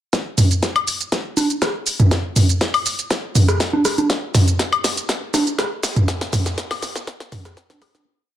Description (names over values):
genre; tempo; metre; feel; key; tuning
house; 121 BPM; 4/4; straight; none; none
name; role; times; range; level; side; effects
deep house drum kit; drums; 0.1-8.0 s; hi-hat, shaker, snare drum, woodblock; -21 LUFS; left 1 dB; high-pass filter on snare, high-pass filter on hats, high-pass filter on perc, high-pass filter on room
electronic kick drum; drums; 0.1-7.7 s; none; -25 LUFS; left 1 dB; high-pass filter on kick, high-pass filter on room
punchy analog drum machine; percussion; 0.4-8.0 s; congas, rim click, toms; -17 LUFS; right 1 dB; sidechain pumping on toms, sidechain pumping on perc, sidechain pumping on snare
room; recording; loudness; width
light reverb; none; -17 LUFS; side -12 dB against mid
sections
0.1-8.1 build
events
build-up 0.1-8.1; drum fill 0.1-8.1; fade-out 5.4-8.1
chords
none